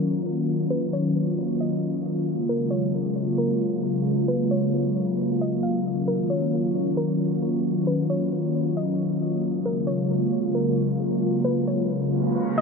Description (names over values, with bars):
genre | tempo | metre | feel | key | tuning
hip hop, atmospheric cloud-rap | 134 BPM | 4/4 | half-time | Eb minor | A4 = 440 Hz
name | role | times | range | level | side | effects
soft round pluck | melody | 0.0-12.6 s | Bb4 to F5 | -31 LUFS | left 1 dB | chorus, ping-pong delay
airy breathy pad | sustained chords | 0.0-12.6 s | Db3 to F4 | -22 LUFS | left 1 dB | chorus
room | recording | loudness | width
moderate shimmer reverb, RT60 5.5 s | low-pass filter | -22 LUFS | side -4 dB against mid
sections
0.0-12.6 A section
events
filter sweep 0.0-12.6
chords
0.0 Ebm9; 2.3 Gbmaj9; 5.9 Ebm9; 9.4 Gbmaj9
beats
0.03 | 0.48 0.93 1.38 1.82 | 2.27 2.72 3.17 3.62 | 4.06 4.51 4.96 5.41 | 5.85 6.30 6.75 7.20 | 7.64 8.09 8.54 8.99 | 9.44 9.88 10.33 10.78 | 11.23 11.68 12.12 12.57